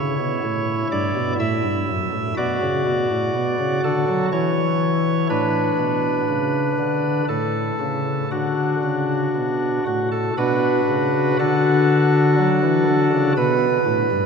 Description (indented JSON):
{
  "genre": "classical, chorale-style piece for pipe organ",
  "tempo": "60 BPM",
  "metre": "3/4",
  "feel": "uneven beats, rubato",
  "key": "D major",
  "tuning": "A4 = 441 Hz",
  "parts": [
    { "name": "chamber organ, cornet", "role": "solo", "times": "0.0-14.3 s", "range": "F#2 to E5", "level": "-18 LUFS", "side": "equal", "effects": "none" }
  ],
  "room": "wet cathedral reverb, RT60 4.8 s",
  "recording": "minimal, uncompressed stereo recording",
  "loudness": "-18 LUFS",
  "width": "side -5 dB against mid",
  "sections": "0.0-11.4 A section; 11.4-14.3 A section",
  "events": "none",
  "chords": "0.0 C#m7b5; 1.4 F#m; 2.4 Bm7; 4.3 N.C.; 5.3 D5/A; 7.3 A; 8.3 D"
}